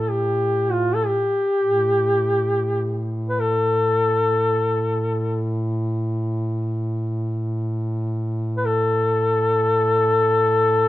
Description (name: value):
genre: caucasian folk, Caucasian lament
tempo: free time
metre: none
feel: none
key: unclear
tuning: A4 = 445 Hz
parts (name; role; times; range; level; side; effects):
- mellow duduk; melody; 0.0-10.9 s; F4 to B4; -19 LUFS; left 1 dB; none
- dark duduk; drone; 0.0-10.9 s; A2; -24 LUFS; equal; none
room: little or no reverb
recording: close, detailed microphones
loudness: -19 LUFS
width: side -15 dB against mid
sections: 0.0-10.9 A section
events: none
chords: none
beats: free time